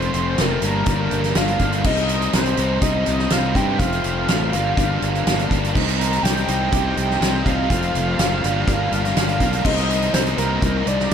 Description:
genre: indie rock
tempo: 123 BPM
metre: 4/4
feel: straight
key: C minor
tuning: A4 = 440 Hz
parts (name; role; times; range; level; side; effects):
- overdriven synth lead; melody; 0.0-11.1 s; Bb4 to Bb5; -24 LUFS; equal; distortion, chorus, analog delay
- bell-like tine electric piano; second line; 0.0-11.1 s; Bb3 to Bb4; -34 LUFS; moving between right 7 dB and right 13 dB; none
- biting overdriven guitar; riff; 0.0-11.1 s; F2 to Eb4; -25 LUFS; left 12 dB; none
- scooped high-gain guitar; riff; 0.0-11.1 s; F2 to F4; -26 LUFS; right 9 dB; distortion, ensemble chorus
- fuzz fingered electric bass; bass; 0.0-11.1 s; F1 to G2; -23 LUFS; equal; overdrive
- loose indie drum kit; drums; 0.0-11.1 s; crash cymbal, hi-hat, kick drum, snare drum; -22 LUFS; equal; none
- combo organ; sustained chords; 5.8-11.1 s; Eb4 to Bb5; -34 LUFS; right 2 dB; none
room: small room reverb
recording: echo-heavy mix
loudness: -17 LUFS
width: side -8 dB against mid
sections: 0.0-11.1 A section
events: none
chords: 0.0 F; 0.6 Gm7; 1.9 Cm; 3.8 F; 4.5 Gm7; 5.8 Cm7; 7.7 F; 8.4 Gm7; 9.7 Cm7

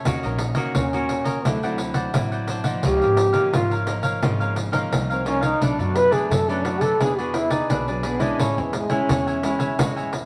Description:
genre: samba and choro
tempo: 86 BPM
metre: 4/4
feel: straight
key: unclear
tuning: A4 = 437 Hz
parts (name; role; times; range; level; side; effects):
- cavaquinho; accompaniment; 0.0-10.2 s; D4 to G#5; -32 LUFS; equal; none
- nylon-string guitar; accompaniment; 0.0-10.3 s; F#2 to G#4; -31 LUFS; equal; none
- upright bass; bass; 0.1-10.3 s; G#1 to F#2; -31 LUFS; equal; none
- pandeiro; percussion; 0.1-10.3 s; none; -28 LUFS; equal; none
- warm trombone; melody; 0.8-10.0 s; E3 to B4; -25 LUFS; equal; none
room: wet studio reverb, RT60 1.0 s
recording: none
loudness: -22 LUFS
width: mono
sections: 0.0-10.3 A section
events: trombone solo 0.0-10.3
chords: 0.1 D#m7; 1.4 D9; 2.8 C#69; 5.6 Bm7; 7.0 E7; 8.4 Amaj7

